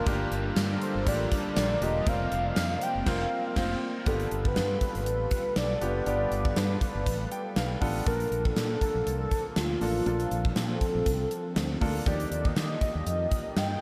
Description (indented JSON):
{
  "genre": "1980s-style pop",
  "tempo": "120 BPM",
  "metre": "4/4",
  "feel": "swing 55% on 16ths",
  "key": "unclear",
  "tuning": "A4 = 440 Hz",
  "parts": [
    { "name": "biting overdriven guitar", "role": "accompaniment", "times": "0.0-3.7 s", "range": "F2 to Bb3", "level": "-43 LUFS", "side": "equal", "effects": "analog chorus" },
    { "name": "clear concert grand piano", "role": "accompaniment", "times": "0.0-13.8 s", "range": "Bb3 to A5", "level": "-37 LUFS", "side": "equal", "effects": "none" },
    { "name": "phased analog pad", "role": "sustained chords", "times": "0.0-13.8 s", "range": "Eb3 to B4", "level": "-40 LUFS", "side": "equal", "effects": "phaser, chorus" },
    { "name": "mellow fretless electric bass", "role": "bass", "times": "0.1-13.8 s", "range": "E1 to Eb3", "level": "-34 LUFS", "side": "equal", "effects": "ensemble chorus" },
    { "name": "gated 80s drum kit", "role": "drums", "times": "0.1-13.7 s", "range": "crash cymbal, hi-hat, kick drum, snare drum, tambourine", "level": "-33 LUFS", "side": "equal", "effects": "none" },
    { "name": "warm velvety synth lead", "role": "melody", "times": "0.8-13.8 s", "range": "F4 to G5", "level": "-34 LUFS", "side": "equal", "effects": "chorus, diffuse ambient delay" }
  ],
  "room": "wet huge ambient reverb, RT60 7.3 s",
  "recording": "dreamy mix soaked in reverb",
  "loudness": "-28 LUFS",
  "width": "mono",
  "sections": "0.0-4.1 A section; 4.1-13.8 B section",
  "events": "band accent 3.1-4.1; grand piano fill 7.1-8.1",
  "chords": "0.1 Gm7; 2.1 Fsus4; 4.1 G7; 8.1 Bbmaj7; 12.1 Ebmaj7"
}